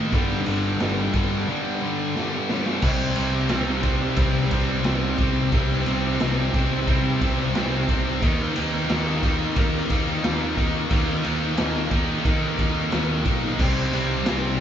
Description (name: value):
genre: hard rock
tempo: 89 BPM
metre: 4/4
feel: straight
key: unclear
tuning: A4 = 441 Hz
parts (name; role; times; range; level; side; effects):
- tonewheel organ; sustained chords; 0.0-14.6 s; G3 to F5; -37 LUFS; equal; none
- distorted electric guitar; riff; 0.0-14.6 s; G2 to Eb4; -32 LUFS; equal; none
- overdriven electric guitar; riff; 0.0-14.6 s; G2 to Eb4; -28 LUFS; right 8 dB; none
- scooped high-gain guitar; riff; 0.0-14.6 s; G2 to Eb4; -26 LUFS; left 7 dB; distortion
- fingered electric bass; bass; 0.0-14.6 s; G1 to Eb3; -28 LUFS; equal; none
- raw garage drum kit; drums; 0.1-14.4 s; crash cymbal, kick drum, ride cymbal, snare drum; -25 LUFS; equal; none
room: moderate large studio reverb, RT60 0.9 s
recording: band playing live in one room, nothing above 7.5 kHz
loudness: -20 LUFS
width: side -9 dB against mid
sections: 0.0-2.8 A section; 2.8-14.6 A section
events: break 1.5-2.8; drum fill 2.2-2.8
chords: 0.1 G5; 2.8 C; 8.2 Eb5; 13.6 C5